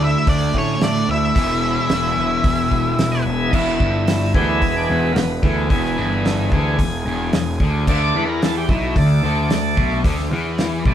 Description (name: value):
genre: classic rock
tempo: 110 BPM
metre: 4/4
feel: straight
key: E mixolydian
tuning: A4 = 440 Hz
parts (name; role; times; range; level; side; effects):
- octave-fuzz lead guitar; melody; 0.0-3.2 s; C#5 to E5; -21 LUFS; equal; distortion
- octave-fuzz lead guitar; second line; 0.0-3.2 s; C#4 to E4; -28 LUFS; right 5 dB; distortion
- bright tonewheel organ; sustained chords; 0.0-10.9 s; D3 to E5; -23 LUFS; right 1 dB; overdrive, slow rotary speaker
- cranked stack guitar; riff; 0.0-10.9 s; E2 to D4; -21 LUFS; left 1 dB; overdrive, spring reverb
- fuzz picked electric bass; bass; 0.0-10.9 s; E1 to A2; -23 LUFS; equal; overdrive
- damped 70s drum kit; drums; 0.3-10.9 s; crash cymbal, hi-hat, kick drum, snare drum; -20 LUFS; equal; none
room: moderate studio ambience, RT60 0.5 s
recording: band playing live in one room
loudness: -16 LUFS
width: side -10 dB against mid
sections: 0.0-3.5 A section; 3.5-10.9 B section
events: tonewheel organ solo 3.5-10.9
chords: 0.0 Dadd9; 1.4 E; 7.9 D5